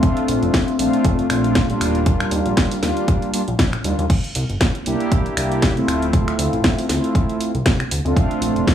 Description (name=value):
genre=nu-disco, nu disco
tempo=118 BPM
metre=4/4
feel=swing 56% on 16ths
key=unclear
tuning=A4 = 439 Hz
part: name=mellow synth brass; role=accompaniment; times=0.0-8.7 s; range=G3 to G4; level=-20 LUFS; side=equal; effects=chorus, sidechain pumping, tape echo
part: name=electronic kick drum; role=drums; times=0.0-8.7 s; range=none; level=-18 LUFS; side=equal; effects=none
part: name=house drum kit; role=drums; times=0.0-8.7 s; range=crash cymbal, finger snaps, hi-hat, snare drum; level=-23 LUFS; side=equal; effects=none
part: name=fat analog bass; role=bass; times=0.3-8.6 s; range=D1 to Eb2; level=-23 LUFS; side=equal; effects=none
room=light reverb, digital ambience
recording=dry, gritty hardware recording, small room ambience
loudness=-16 LUFS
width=side -10 dB against mid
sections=0.0-8.7 A section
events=none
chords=0.0 Bbmaj9; 1.8 Ebmaj9; 4.1 C7; 5.9 Dm9; 8.2 Bbmaj9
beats=| 0.03 0.54 1.05 1.56 | 2.06 2.57 3.08 3.59 | 4.10 4.61 5.12 5.62 | 6.13 6.64 7.15 7.66 | 8.17 8.68